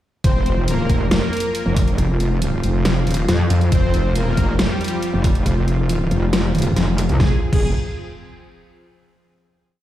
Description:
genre	heavy wobble dubstep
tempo	138 BPM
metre	4/4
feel	half-time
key	unclear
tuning	A4 = 438 Hz
part	soft supersaw	melody	0.2-7.7 s	G3 to C5	-26 LUFS	equal	digital delay
part	lush unison pad	sustained chords	0.2-7.4 s	F3 to Ab4	-27 LUFS	equal	chorus, sidechain pumping
part	wobble bass	bass	0.2-7.7 s	Eb1 to F2	-18 LUFS	equal	chorus, overdrive
part	dubstep drum kit	drums	0.2-7.6 s	crash cymbal, hi-hat, snare drum	-23 LUFS	left 1 dB	overdrive
part	electronic kick drum	drums	0.2-7.6 s	none	-18 LUFS	equal	overdrive
part	metallic wobble bass	bass	0.9-7.2 s	F1 to F2	-18 LUFS	equal	chorus, overdrive
room	digital ambience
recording	played on a big sound system in a bare room, large studio reverb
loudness	-16 LUFS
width	side -13 dB against mid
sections	0.2-7.2 drop; 7.2-8.9 final chord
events	drop 0.2-7.2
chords	0.2 F5; 7.2 Fm

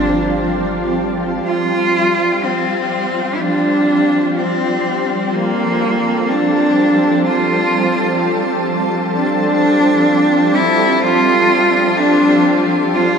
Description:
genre	ambient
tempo	free time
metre	none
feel	none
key	unclear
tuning	A4 = 440 Hz
part	clear cello	melody	0.0-13.2 s	Bb3 to F4	-15 LUFS	equal	diffuse ambient delay
part	shimmering ambient pad	sustained chords	0.0-13.2 s	F3 to A4	-17 LUFS	right 1 dB	chorus, built-in reverb
part	warm sub bass	bass	0.0-1.4 s	G1	-30 LUFS	equal	none
room	wet shimmer reverb, RT60 8.8 s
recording	none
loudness	-13 LUFS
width	side -6 dB against mid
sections	0.0-1.5 A section; 1.5-13.2 B section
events	none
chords	0.0 G7(no3)

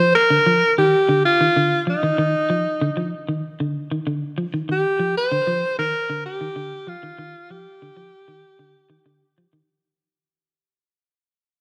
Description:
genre	afrobeat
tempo	96 BPM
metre	4/4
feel	straight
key	C minor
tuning	A4 = 439 Hz
part	edgy alto saxophone	melody	0.0-9.4 s	Eb4 to C5	-20 LUFS	equal	tape echo
part	clean electric guitar	arpeggios	0.0-9.6 s	D3 to F3	-26 LUFS	equal	none
room	moderate echo chamber reverb, RT60 1.9 s, small room ambience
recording	none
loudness	-20 LUFS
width	mono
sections	0.0-9.7 A section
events	fade-out 0.0-9.7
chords	0.0 Cmadd9 (rootless)

